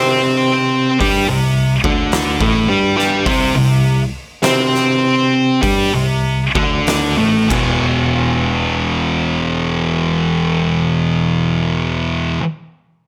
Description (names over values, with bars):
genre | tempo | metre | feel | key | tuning
stoner and doom metal | 46-55 BPM | 4/4 | straight | E minor | A4 = 440 Hz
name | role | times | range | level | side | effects
thick fuzz guitar | riff | 0.0-12.4 s | E2 to C5 | -18 LUFS | equal | distortion
thick fuzz guitar | riff | 0.0-12.4 s | E2 to C5 | -21 LUFS | equal | distortion
overdriven tine electric piano | bass | 0.0-12.4 s | E1 to C3 | -25 LUFS | equal | fast tremolo
oversized low-tuned drum kit | drums | 1.0-7.8 s | crash cymbal, hi-hat, kick drum, snare drum | -25 LUFS | equal | none
room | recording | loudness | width
light reverb, small room ambience | none | -16 LUFS | mono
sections
0.0-8.2 A section; 8.2-13.1 B section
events
slowing down 0.0-8.2; drum fill 7.5-8.2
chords
0.0 C5; 7.5 E5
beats
1.00 2.12 | 3.26 4.43 5.63 6.87 | 8.15 9.46 10.77 12.08